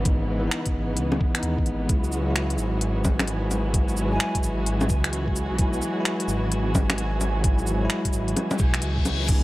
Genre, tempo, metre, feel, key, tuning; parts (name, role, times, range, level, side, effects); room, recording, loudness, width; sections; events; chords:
future garage; 130 BPM; 4/4; swing 64% on 16ths; A4 = 440 Hz
bell-like tine electric piano; accompaniment; 0.0-9.4 s; E3 to E4; -29 LUFS; left 1 dB; sidechain pumping, analog delay
warm studio string section; sustained chords; 0.0-9.4 s; C#3 to F#4; -32 LUFS; right 1 dB; sidechain pumping
swelling detuned saw bass; bass; 0.0-9.4 s; G#1 to D#2; -26 LUFS; equal; sidechain pumping
electronic kick drum; drums; 0.1-9.4 s; -23 LUFS; equal
organic electronic drum kit; drums; 0.1-9.4 s; bongos, cabasa, crash cymbal, finger snaps, hi-hat; -27 LUFS; left 1 dB
flickering grainy texture; texture; 2.2-9.4 s; G#5; -37 LUFS; right 2 dB; built-in reverb
mellow silver concert flute; melody; 4.1-4.4 s; G#5; -36 LUFS; equal; tape echo
reverse cymbal and impact; sound effects; 8.5-9.4 s; -32 LUFS; left 5 dB
light reverb, digital ambience; -22 LUFS; side -18 dB against mid
0.0-9.3 A section
reverse cymbal 8.5-9.3; impact 9.3
0.0 C#m7; 1.9 Eadd9